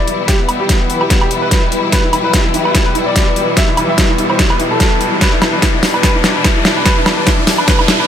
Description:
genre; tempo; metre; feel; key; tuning
heavy wobble dubstep; 146 BPM; 4/4; swing 55% on 16ths, half-time; E minor; A4 = 440 Hz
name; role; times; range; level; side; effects
clear baby grand piano; melody; 0.0-8.1 s; B3 to E5; -19 LUFS; right 1 dB; tape echo
bright symphonic string section; sustained chords; 0.0-8.1 s; B2 to E4; -19 LUFS; left 3 dB; sidechain pumping
riser; sound effects; 1.4-8.1 s; none; -21 LUFS; left 1 dB; none
granular cloud pad; texture; 0.0-8.1 s; E4 to A5; -22 LUFS; left 1 dB; built-in reverb, sidechain pumping
dubstep drum kit; drums; 0.1-8.0 s; hi-hat, snare drum, woodblock; -15 LUFS; equal; overdrive
electronic kick drum; drums; 0.3-7.8 s; none; -15 LUFS; equal; none
room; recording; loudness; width
light reverb, digital ambience; none; -10 LUFS; side -9 dB against mid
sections
0.0-8.1 A section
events
build-up 0.0-8.1; drum fill 0.0-8.1; riser 1.4-8.1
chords
0.0 Emadd9

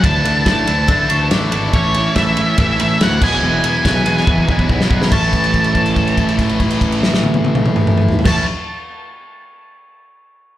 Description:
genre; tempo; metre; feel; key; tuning
indie rock; 142 BPM; 4/4; straight; A major; A4 = 440 Hz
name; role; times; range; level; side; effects
octave-fuzz lead guitar; melody; 0.0-8.4 s; C#5 to A5; -19 LUFS; equal; distortion, analog delay
distorted electric guitar; riff; 0.0-8.5 s; E2 to E4; -22 LUFS; left 6 dB; overdrive, slapback echo
twelve-string electric guitar; riff; 0.0-8.5 s; A2 to A4; -22 LUFS; right 6 dB; analog chorus, slapback echo
fuzz picked electric bass; bass; 0.0-8.4 s; E1 to D3; -19 LUFS; equal; overdrive
loose indie drum kit; drums; 0.0-8.4 s; crash cymbal, kick drum, ride cymbal, snare drum, toms; -17 LUFS; equal; none
glockenspiel with brass mallets; second line; 0.9-1.6, 5.1-8.4 s; C#6 to E6; -33 LUFS; equal; slapback echo
room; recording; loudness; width
little or no reverb; live gig heard through the venue's PA, club reverb; -12 LUFS; side -13 dB against mid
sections
0.0-5.1 A section; 5.1-8.5 B section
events
drum fill 4.3-5.1; held note 5.1-8.2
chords
0.0 Dsus2; 1.7 A; 3.2 Eadd9; 5.1 A

